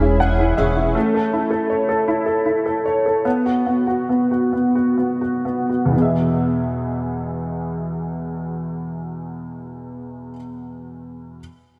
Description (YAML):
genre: pop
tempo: 40-54 BPM (dotted quarters)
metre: 6/8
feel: straight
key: E major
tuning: A4 = 440 Hz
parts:
  - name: clear upright piano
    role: accompaniment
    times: 0.0-11.4 s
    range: E2 to F#5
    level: -21 LUFS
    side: equal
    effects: analog chorus
  - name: fingerpicked steel-string acoustic guitar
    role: arpeggios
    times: 0.0-1.5 s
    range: G#3 to G#4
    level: -28 LUFS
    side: equal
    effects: ensemble chorus
  - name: upright bass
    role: bass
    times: 0.0-0.9 s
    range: E1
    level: -22 LUFS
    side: equal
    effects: none
room: wet lush hall reverb, RT60 2.5 s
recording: bright 1980s-style digital production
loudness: -20 LUFS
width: mono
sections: 0.0-5.9 A section; 5.9-8.9 B section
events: upright piano fill 0.0-1.0; slowing down 1.0-5.9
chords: 0.0 C#m/E; 1.0 A; 3.3 B5; 5.9 E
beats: | 0.95 2.08 | 3.25 4.52 | 5.93 7.41